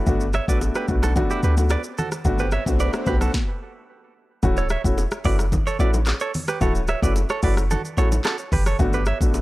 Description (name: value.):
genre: afrobeats.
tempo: 110 BPM.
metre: 4/4.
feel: straight.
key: D major.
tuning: A4 = 440 Hz.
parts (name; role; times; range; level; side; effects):
warm concert grand piano; accompaniment; 0.0-9.4 s; A3 to F#4; -26 LUFS; left 2 dB; none.
clean 808-style bass; bass; 0.1-9.4 s; D1 to D2; -22 LUFS; equal; none.
afro-pop drum kit; drums; 0.1-9.4 s; handclaps, hi-hat, kick drum, rim click, shaker, snare drum; -25 LUFS; equal; none.
congas and bongos; percussion; 0.1-9.4 s; none; -31 LUFS; left 1 dB; none.
swell; sound effects; 1.9-3.3 s; none; -36 LUFS; equal; none.
direct-recorded clean electric guitar; riff; 0.3-9.2 s; E4 to E5; -28 LUFS; right 5 dB; spring reverb, analog delay.
room: little or no reverb.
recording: dry, gritty hardware recording.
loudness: -19 LUFS.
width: side -18 dB against mid.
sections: 0.0-4.4 A section; 4.4-9.4 B section.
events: swell 1.9-4.4; stop 3.3-4.4.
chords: 0.1 Gmaj7; 4.4 Dmaj7; 8.8 Gmaj7.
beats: | 0.07 0.61 1.16 1.70 | 2.25 2.79 3.34 3.88 | 4.43 4.98 5.52 6.07 | 6.61 7.16 7.70 8.25 | 8.79 9.34.